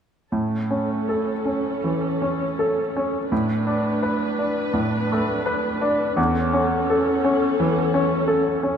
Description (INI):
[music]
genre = classical, romantic movement for piano and orchestra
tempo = 78-87 BPM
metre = 4/4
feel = rubato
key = A major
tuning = A4 = 439 Hz
[part]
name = clear baby grand piano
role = melody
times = 0.3-8.8 s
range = E2 to B4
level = -21 LUFS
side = equal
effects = none
[part]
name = rich studio viola section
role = accompaniment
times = 0.3-8.8 s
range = C#4 to B4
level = -26 LUFS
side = left 1 dB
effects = none
[sound]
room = moderate concert hall reverb, RT60 2.4 s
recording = none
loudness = -20 LUFS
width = side -8 dB against mid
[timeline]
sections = 0.3-8.8 A section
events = none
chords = 0.3 A; 3.3 Bm7/A; 6.2 A/E